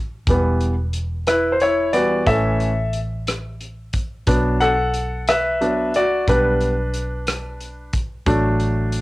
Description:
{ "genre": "six-eight pop ballad", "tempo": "60 BPM (dotted quarters)", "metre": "6/8", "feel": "straight", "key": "unclear", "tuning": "A4 = 440 Hz", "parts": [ { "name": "vintage muted fingered electric bass", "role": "bass", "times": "0.0-9.0 s", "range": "E1 to B1", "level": "-23 LUFS", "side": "equal", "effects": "none" }, { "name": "clear concert grand piano", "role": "accompaniment", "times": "0.3-9.0 s", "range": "E3 to F#5", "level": "-18 LUFS", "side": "equal", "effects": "cassette tape, plate reverb" }, { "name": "loose indie drum kit", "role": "drums", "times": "0.3-9.0 s", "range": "hi-hat, kick drum, rim click", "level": "-24 LUFS", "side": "equal", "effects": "cassette tape" } ], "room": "moderate small room reverb, RT60 0.5 s", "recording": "home recording on cassette", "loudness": "-17 LUFS", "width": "side -19 dB against mid", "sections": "0.0-9.0 A section", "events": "grand piano solo 0.0-9.0", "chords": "0.3 Em; 2.3 A; 4.3 Bm; 6.3 G/B; 8.3 D/A" }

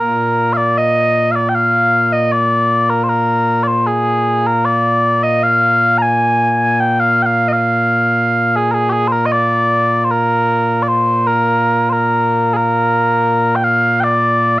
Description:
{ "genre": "scottish traditional", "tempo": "77 BPM", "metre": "3/4", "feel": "straight", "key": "Bb mixolydian", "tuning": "A4 = 438 Hz", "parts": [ { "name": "mellow small bagpipes", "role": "solo", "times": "0.0-14.6 s", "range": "Bb2 to Bb5", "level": "-12 LUFS", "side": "equal", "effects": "cassette tape" } ], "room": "moderate studio reverb, RT60 0.5 s", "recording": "home recording on cassette", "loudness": "-12 LUFS", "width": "side -18 dB against mid", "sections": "0.0-14.0 A section", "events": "none", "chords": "none" }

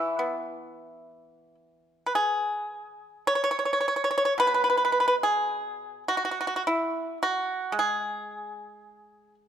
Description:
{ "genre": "chinese traditional, Chinese solo plucked strings", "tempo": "54 BPM", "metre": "4/4", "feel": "rubato", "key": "E gong mode", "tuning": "A4 = 441 Hz", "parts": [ { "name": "pipa", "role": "solo", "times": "0.0-9.5 s", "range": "B2 to C#5", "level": "-24 LUFS", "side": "equal", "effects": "none" } ], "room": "light reverb", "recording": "none", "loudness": "-24 LUFS", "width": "side -9 dB against mid", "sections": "0.0-9.5 A section", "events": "none", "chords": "none" }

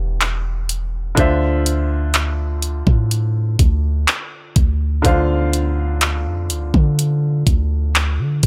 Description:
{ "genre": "contemporary R&B", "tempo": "62 BPM", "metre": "4/4", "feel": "straight", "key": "unclear", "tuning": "A4 = 438 Hz", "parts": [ { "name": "clear baby grand piano", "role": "accompaniment", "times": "0.0-8.5 s", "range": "D3 to G5", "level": "-25 LUFS", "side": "equal", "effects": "none" }, { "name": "warm 808-style bass", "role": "bass", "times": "0.0-8.5 s", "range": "E1 to D3", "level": "-20 LUFS", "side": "equal", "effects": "none" }, { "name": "smooth R&B drum kit", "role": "drums", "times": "0.2-8.5 s", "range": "handclaps, hi-hat, kick drum", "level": "-19 LUFS", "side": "equal", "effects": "none" } ], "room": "little or no reverb", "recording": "none", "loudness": "-18 LUFS", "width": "mono", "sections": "0.0-8.5 A section", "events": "none", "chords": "0.0 Em7; 1.2 Dm7" }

